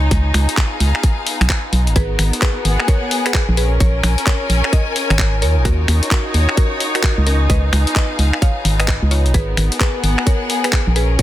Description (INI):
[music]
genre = UK garage, two-step garage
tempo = 130 BPM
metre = 4/4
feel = swing 63% on 16ths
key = G# dorian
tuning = A4 = 441 Hz
[part]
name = rich chamber violin section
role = sustained chords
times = 0.0-11.2 s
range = B3 to A#4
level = -28 LUFS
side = left 3 dB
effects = sidechain pumping
[part]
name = organ-like FM bass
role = bass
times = 0.0-11.2 s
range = G#1 to D#2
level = -15 LUFS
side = equal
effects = none
[part]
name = rich studio string section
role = texture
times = 0.0-11.2 s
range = B3 to G#5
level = -23 LUFS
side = left 1 dB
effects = sidechain pumping
[part]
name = breakbeat sampler-style drum kit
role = drums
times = 0.1-11.2 s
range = finger snaps, handclaps, hi-hat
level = -21 LUFS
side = left 1 dB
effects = soft clipping on snare
[part]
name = electronic kick drum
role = drums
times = 0.1-11.2 s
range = none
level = -16 LUFS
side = equal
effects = none
[part]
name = mallet-like synth pluck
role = melody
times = 2.0-11.2 s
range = C#4 to E#5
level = -25 LUFS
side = left 1 dB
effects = chorus, dub echo
[sound]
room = digital ambience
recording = dense, heavily limited modern master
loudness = -14 LUFS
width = side -14 dB against mid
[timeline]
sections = 0.0-11.2 A section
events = none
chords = 0.0 C#9; 2.0 G#m7; 3.6 A#m7; 5.4 D#m7; 7.3 C#9; 9.3 G#m7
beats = | 0.11 0.57 1.04 1.50 | 1.96 2.42 2.88 3.34 | 3.81 4.27 4.73 5.19 | 5.65 6.11 6.57 7.04 | 7.50 7.96 8.42 8.88 | 9.34 9.80 10.27 10.73 | 11.19